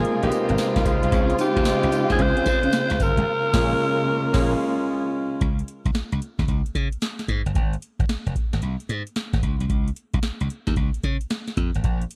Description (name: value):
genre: R&B, new jack swing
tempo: 112 BPM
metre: 4/4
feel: swing 66% on 16ths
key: unclear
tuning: A4 = 436 Hz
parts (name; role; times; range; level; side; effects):
- breathy alto saxophone; melody; 0.0-4.9 s; G4 to C5; -27 LUFS; equal; delay
- bright concert grand piano; accompaniment; 0.0-5.4 s; Ab3 to G4; -28 LUFS; equal; none
- warm studio string section; sustained chords; 0.0-5.4 s; C3 to F4; -30 LUFS; equal; none
- clean electric guitar; riff; 0.0-3.2 s; Ab3 to F4; -32 LUFS; equal; none
- glassy slap bass; bass; 0.0-12.0 s; F1 to Db3; -27 LUFS; equal; none
- booming analog drum machine; drums; 0.0-12.2 s; crash cymbal, hi-hat, kick drum, snare drum, tambourine; -27 LUFS; equal; overdrive
- tonewheel organ; stabs; 1.1-4.5 s; Bb3 to Ab4; -35 LUFS; equal; none
room: moderate plate reverb, RT60 1.9 s, digital ambience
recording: dreamy mix soaked in reverb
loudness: -23 LUFS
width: mono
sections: 0.0-5.4 A section; 5.4-12.2 B section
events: band accent 3.3-5.4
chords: 0.0 Ab69; 0.9 Dbmaj7; 3.3 Bbm7; 5.4 Db5; 7.6 N.C.